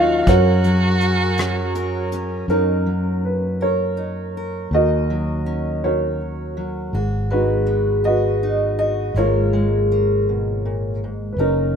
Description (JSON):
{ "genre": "acoustic folk-pop ballad", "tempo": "54 BPM (dotted quarters)", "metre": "6/8", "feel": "straight", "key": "F# major", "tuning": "A4 = 436 Hz", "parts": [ { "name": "dark grand piano", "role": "melody", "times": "0.0-11.8 s", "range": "C#4 to F#5", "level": "-21 LUFS", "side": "right 1 dB", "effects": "none" }, { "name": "dark violin", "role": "second line", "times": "0.0-2.1 s", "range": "F#4", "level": "-25 LUFS", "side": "right 2 dB", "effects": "none" }, { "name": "fingerpicked steel-string acoustic guitar", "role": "accompaniment", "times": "0.0-11.8 s", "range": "F#2 to A#4", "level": "-24 LUFS", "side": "left 1 dB", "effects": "none" }, { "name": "pedal harmonium", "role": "sustained chords", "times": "0.0-2.5 s", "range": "D#3 to A#4", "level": "-29 LUFS", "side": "right 1 dB", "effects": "none" }, { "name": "fretless electric bass", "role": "bass", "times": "0.0-11.8 s", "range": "F#1 to F#2", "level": "-22 LUFS", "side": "equal", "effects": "none" }, { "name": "soft brush drum kit", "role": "drums", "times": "0.3-2.3 s", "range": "hi-hat, kick drum, rim click", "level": "-21 LUFS", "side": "equal", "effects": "none" } ], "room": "little or no reverb", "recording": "minimal, uncompressed stereo recording", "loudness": "-17 LUFS", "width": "side -7 dB against mid", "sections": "0.0-2.5 A section; 2.5-11.8 B section", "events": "none", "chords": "0.3 F#; 2.5 F#6; 4.7 D#m7; 6.9 G#m7; 9.2 C#6/G#", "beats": "| 0.27 1.38 | 2.49 3.61 | 4.72 5.83 | 6.94 8.05 | 9.16 10.27 | 11.39" }